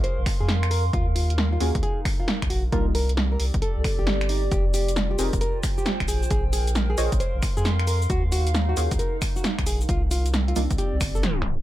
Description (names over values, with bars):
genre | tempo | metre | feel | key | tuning
UK garage, two-step garage | 134 BPM | 4/4 | swing 65% on 16ths | unclear | A4 = 440 Hz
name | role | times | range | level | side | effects
nylon-string guitar | melody | 0.0-11.6 s | Eb4 to C5 | -31 LUFS | equal | tape echo
soft dub sub bass | bass | 0.0-11.6 s | Eb1 to F2 | -24 LUFS | equal | sidechain pumping
punchy analog drum machine | drums | 0.0-11.6 s | finger snaps, hi-hat, shaker, snare drum | -28 LUFS | right 1 dB | none
warbly tape-like pad | texture | 0.0-11.6 s | C4 to C6 | -33 LUFS | right 1 dB | chorus, built-in reverb, sidechain pumping
electronic kick drum | drums | 0.3-11.4 s | none | -26 LUFS | equal | none
deep mellow chord stab | stabs | 1.6-10.7 s | G3 to Eb5 | -29 LUFS | equal | chorus, ping-pong delay
room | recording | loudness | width
light reverb | tape stop | -21 LUFS | side -14 dB against mid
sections
0.0-11.6 A section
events
tape stop 11.2-11.6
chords
0.0 Bbsus2; 0.9 Eb7sus2; 2.7 Cm11; 4.5 Fm11; 6.1 Bb7sus2; 8.1 Ebm9; 9.9 Cm11